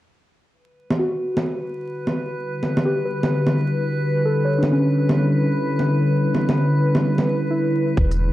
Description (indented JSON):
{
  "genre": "future garage",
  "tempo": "129 BPM",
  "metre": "4/4",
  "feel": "swing 61% on 16ths",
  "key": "E dorian",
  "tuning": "A4 = 439 Hz",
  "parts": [
    { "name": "warbly tape-like pad", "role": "sustained chords", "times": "2.0-8.3 s", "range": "D3 to B4", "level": "-21 LUFS", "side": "equal", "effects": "chorus, built-in reverb, sidechain pumping" },
    { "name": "drifting glass-harmonics texture", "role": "texture", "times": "1.2-8.3 s", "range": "B4", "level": "-30 LUFS", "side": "right 1 dB", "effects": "chorus, built-in reverb" },
    { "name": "electronic bongos and hi-hat", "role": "drums", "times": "0.9-8.2 s", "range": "none", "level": "-24 LUFS", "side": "right 1 dB", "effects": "none" },
    { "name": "muted felt-like synth keys", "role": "accompaniment", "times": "1.0-8.2 s", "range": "C#4 to C#5", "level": "-25 LUFS", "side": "left 1 dB", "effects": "chorus, sidechain pumping, low-pass filter, tape echo" },
    { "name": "soft 808-style bass", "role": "bass", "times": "8.0-8.3 s", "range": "E1", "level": "-20 LUFS", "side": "equal", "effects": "tube saturation, sidechain pumping" },
    { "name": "electronic kick drum", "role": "drums", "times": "8.0-8.1 s", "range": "none", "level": "-19 LUFS", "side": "equal", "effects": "none" }
  ],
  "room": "moderate lush hall reverb, RT60 1.9 s",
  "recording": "dry, gritty hardware recording, vinyl crackle",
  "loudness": "-18 LUFS",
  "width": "side -15 dB against mid",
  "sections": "0.5-8.0 A section",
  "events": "filter sweep on synth keys 0.5-8.0",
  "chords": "0.5 Em7"
}